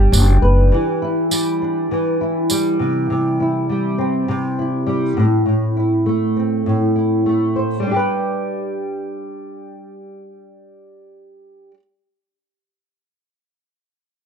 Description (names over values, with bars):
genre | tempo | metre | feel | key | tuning
acoustic pop | 101 BPM | 4/4 | straight | G major | A4 = 440 Hz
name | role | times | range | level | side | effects
flamenco guitar | accompaniment | 0.0-11.8 s | A2 to C5 | -17 LUFS | equal | double-tracked left and right, plate reverb
upright bass | bass | 0.0-0.7 s | F#1 | -12 LUFS | equal | none
tambourine | percussion | 0.1-2.6 s | none | -22 LUFS | right 4 dB | none
room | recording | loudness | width
moderate small room reverb, RT60 0.5 s | dark, warm production | -16 LUFS | side -7 dB against mid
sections
0.0-7.8 A section; 7.8-10.2 B section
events
none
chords
0.0 G; 0.7 Em7; 2.8 C; 5.2 Am; 7.8 G